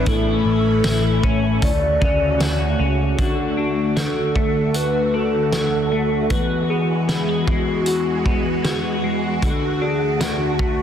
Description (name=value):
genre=dream pop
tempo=77 BPM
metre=4/4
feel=straight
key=D lydian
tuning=A4 = 440 Hz
part: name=warbly nostalgic lead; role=melody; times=0.0-10.8 s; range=F#4 to D5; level=-24 LUFS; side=right 1 dB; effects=chorus, digital delay, shimmer reverb
part: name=phased string machine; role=sustained chords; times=0.0-10.8 s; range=D2 to F#4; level=-24 LUFS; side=right 1 dB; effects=ensemble chorus, phaser, shimmer reverb
part: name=clean electric guitar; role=arpeggios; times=0.0-10.8 s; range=E2 to F#4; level=-22 LUFS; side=left 4 dB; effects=analog chorus, digital delay, shimmer reverb
part: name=vintage muted picked electric bass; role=bass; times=0.0-3.1 s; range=A1 to D2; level=-21 LUFS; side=right 1 dB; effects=none
part: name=loose indie drum kit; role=drums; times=0.1-10.8 s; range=hi-hat, kick drum, snare drum, tambourine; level=-23 LUFS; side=equal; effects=none
room=moderate lush hall reverb, RT60 2.3 s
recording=dense, heavily limited modern master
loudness=-17 LUFS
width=side -9 dB against mid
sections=0.0-3.2 A section; 3.2-10.8 B section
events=none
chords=0.1 A; 1.6 Dmaj7; 3.2 D; 6.3 Eadd9; 9.4 D